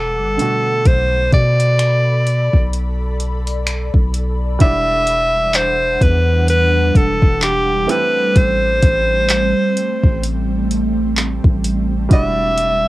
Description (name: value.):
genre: contemporary R&B.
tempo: 64 BPM.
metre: 4/4.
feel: swing 58% on 16ths.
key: E minor.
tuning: A4 = 440 Hz.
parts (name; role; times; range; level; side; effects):
bright alto saxophone; melody; 0.0-12.9 s; G4 to E5; -16 LUFS; equal; cassette tape.
warm baby grand piano; accompaniment; 0.0-12.9 s; B2 to F#5; -25 LUFS; right 5 dB; cassette tape.
ethereal airy pad; sustained chords; 0.0-12.9 s; E3 to D6; -23 LUFS; right 1 dB; ensemble chorus, built-in reverb, cassette tape.
long sustained 808-style bass; bass; 0.0-12.9 s; E1 to B2; -19 LUFS; equal; none.
smooth R&B drum kit; drums; 0.4-12.8 s; finger snaps, handclaps, hi-hat, kick drum; -14 LUFS; equal; cassette tape.
room: little or no reverb.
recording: home recording on cassette.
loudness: -13 LUFS.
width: side -18 dB against mid.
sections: 0.0-4.6 A section; 4.6-12.9 B section.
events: none.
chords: 0.4 Bm7; 4.6 Em9; 7.9 Am7; 12.1 Em9.